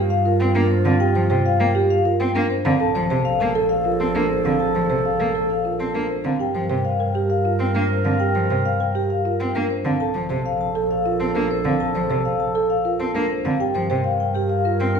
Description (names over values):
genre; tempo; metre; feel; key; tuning
classical, minimalist pattern music; 100 BPM; 3/4; straight; G minor; A4 = 440 Hz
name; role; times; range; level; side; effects
vibraphone with soft mallets; melody; 0.0-15.0 s; G4 to A5; -23 LUFS; left 7 dB; none
warm clarinet; second line; 0.0-15.0 s; F4 to Bb4; -27 LUFS; right 6 dB; none
folk marimba with soft mallets; arpeggios; 0.0-15.0 s; C4 to C5; -24 LUFS; right 8 dB; none
warm double bass; bass; 0.0-15.0 s; Bb1 to G2; -25 LUFS; equal; none
rich cello; accompaniment; 0.4-14.9 s; C3 to C4; -26 LUFS; equal; none
room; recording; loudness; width
wet recital hall reverb, RT60 1.4 s; recorded in a church or concert hall; -18 LUFS; side -6 dB against mid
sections
0.0-15.0 A section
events
none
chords
0.0 Gm7; 2.8 Bbmaj7; 6.4 Gm7; 10.0 Bbmaj7; 13.6 Gm7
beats
0.40 | 1.00 1.60 2.20 | 2.80 3.40 4.00 | 4.60 5.20 5.80 | 6.40 7.00 7.60 | 8.20 8.80 9.40 | 10.00 10.60 11.20 | 11.80 12.40 13.00 | 13.60 14.20 14.80